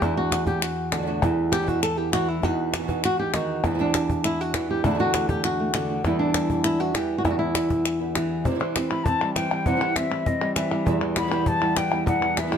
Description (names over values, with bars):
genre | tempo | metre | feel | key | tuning
flamenco | 199 BPM | 4/4 | straight | E minor | A4 = 440 Hz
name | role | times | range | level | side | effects
flamenco guitar | melody | 0.0-12.6 s | E2 to A4 | -24 LUFS | equal | none
flamenco guitar | stabs | 0.0-12.6 s | E2 to F#4 | -29 LUFS | right 6 dB | none
cajon | percussion | 0.0-12.6 s | none | -28 LUFS | left 1 dB | none
palmas hand claps | percussion | 0.0-12.6 s | none | -30 LUFS | left 5 dB | none
mellow silver concert flute | second line | 8.9-12.6 s | D#5 to B5 | -26 LUFS | left 4 dB | none
room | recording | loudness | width
light reverb | none | -21 LUFS | side -8 dB against mid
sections
0.0-8.5 A section; 8.5-12.6 B section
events
flute solo 8.5-12.6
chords
0.0 D/E; 1.2 Em; 2.4 B/E; 3.6 Cadd9/E; 4.8 D/E; 6.0 Em; 7.2 Em7; 8.5 C; 10.9 Em